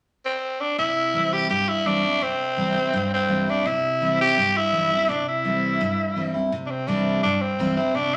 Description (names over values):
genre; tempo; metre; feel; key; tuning
rock; 167 BPM; 4/4; straight; C major; A4 = 440 Hz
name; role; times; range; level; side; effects
raspy tenor saxophone; melody; 0.3-8.2 s; C4 to G4; -24 LUFS; equal; none
picked steel-string acoustic guitar; accompaniment; 0.8-8.2 s; G2 to E4; -27 LUFS; equal; none
room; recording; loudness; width
wet large studio reverb, RT60 0.8 s; none; -23 LUFS; mono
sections
0.8-6.5 A section; 6.5-8.2 B section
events
none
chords
0.0 N.C.; 0.8 C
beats
0.07 0.43 | 0.79 1.15 1.51 1.86 | 2.22 2.58 2.94 3.30 | 3.66 4.01 4.37 4.73 | 5.09 5.45 5.81 6.16 | 6.52 6.88 7.24 7.60 | 7.95